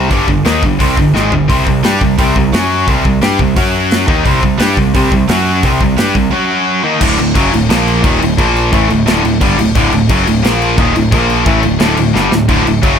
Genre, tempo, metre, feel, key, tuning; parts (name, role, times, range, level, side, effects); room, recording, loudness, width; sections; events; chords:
heavy metal; 175 BPM; 4/4; straight; D phrygian dominant; A4 = 440 Hz
high-gain distorted guitar; riff; 0.0-13.0 s; D2 to G4; -15 LUFS; right 12 dB; distortion
tight distorted guitar; riff; 0.0-13.0 s; D2 to G4; -14 LUFS; left 10 dB; distortion
modern bright picked electric bass; bass; 0.0-13.0 s; D1 to G2; -17 LUFS; equal
modern studio drum kit; drums; 0.1-12.9 s; crash cymbal, hi-hat, kick drum, snare drum, toms; -15 LUFS; equal
light reverb; -9 LUFS; side -7 dB against mid
0.0-7.0 A section; 7.0-13.0 B section
drum fill 1.2-1.5, 12.2-12.5; break 6.3-7.0; half time 7.0-13.0
0.1 G5; 1.5 C5; 2.5 F#5; 2.9 C5; 3.6 F#5; 4.1 C5; 5.3 F#5; 5.6 C5; 6.3 F#5; 6.8 Eb5; 7.0 D; 7.7 Bb5; 8.0 D5; 8.4 Bb5; 8.7 D; 10.4 Bb5; 10.8 D5; 11.1 Bb5; 11.5 D